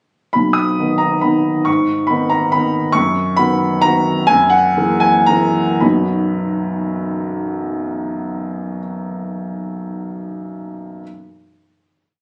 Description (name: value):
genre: classical, piano waltz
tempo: 108-148 BPM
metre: 3/4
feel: rubato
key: B major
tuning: A4 = 440 Hz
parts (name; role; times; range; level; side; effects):
- warm baby grand piano; solo; 0.3-11.0 s; B1 to D#6; -17 LUFS; equal; none
room: moderate large studio reverb, RT60 0.9 s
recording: recorded on a phone in the room, club reverb, compression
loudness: -17 LUFS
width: mono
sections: 0.3-5.8 A section; 5.8-8.9 final chord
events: slowing down 2.3-5.8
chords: 0.3 B; 1.7 G#m; 3.0 B/F#; 4.3 F#9; 5.8 B